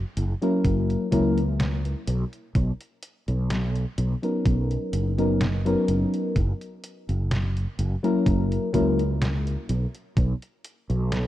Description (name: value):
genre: vaporwave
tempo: 63 BPM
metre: 4/4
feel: swing 53% on 16ths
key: unclear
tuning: A4 = 440 Hz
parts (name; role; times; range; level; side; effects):
- fretless electric bass; bass; 0.0-11.3 s; F#1 to C#2; -24 LUFS; equal; tube saturation, ensemble chorus
- detuned 8-bit digital drum machine; drums; 0.2-11.3 s; hi-hat, snare drum; -32 LUFS; equal; overdrive
- mellow FM electric piano; accompaniment; 0.4-9.0 s; F#3 to A#4; -24 LUFS; left 2 dB; wide subtle chorus, tape echo
- electronic kick drum; drums; 0.6-10.4 s; none; -24 LUFS; equal; overdrive
room: light reverb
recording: rough home demo mix, cassette tape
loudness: -22 LUFS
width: side -14 dB against mid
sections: 0.0-11.3 A section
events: none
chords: 0.0 F#7; 2.1 Bmaj9; 6.4 F#7; 9.7 N.C.